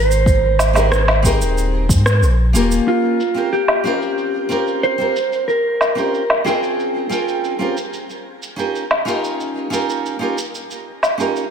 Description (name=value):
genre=sunset chillout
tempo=92 BPM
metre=4/4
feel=straight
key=Bb dorian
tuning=A4 = 443 Hz
part: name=mellow electric guitar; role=melody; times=0.0-7.7 s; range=F4 to C5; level=-20 LUFS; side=right 2 dB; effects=digital delay, shimmer reverb
part: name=warm sub bass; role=bass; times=0.0-2.8 s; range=Eb1 to Ab2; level=-16 LUFS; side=equal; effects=none
part: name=electronic shaker, woodblock and rim click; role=drums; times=0.1-11.5 s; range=none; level=-20 LUFS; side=equal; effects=low-pass filter on perc, low-pass filter on snare, low-pass filter on room
part: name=electronic kick drum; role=drums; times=0.3-2.0 s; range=none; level=-17 LUFS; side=equal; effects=none
part: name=nylon-string guitar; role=accompaniment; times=0.7-11.5 s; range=Bb3 to G5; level=-21 LUFS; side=moving between left 3 dB and right 4 dB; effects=auto-pan, digital delay, shimmer reverb
room=light reverb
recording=none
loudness=-15 LUFS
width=side -7 dB against mid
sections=0.0-2.9 A section; 2.9-11.5 B section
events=kick drops out 2.2-2.9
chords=0.3 Abmaj7; 2.9 Bbm69; 8.1 Eb7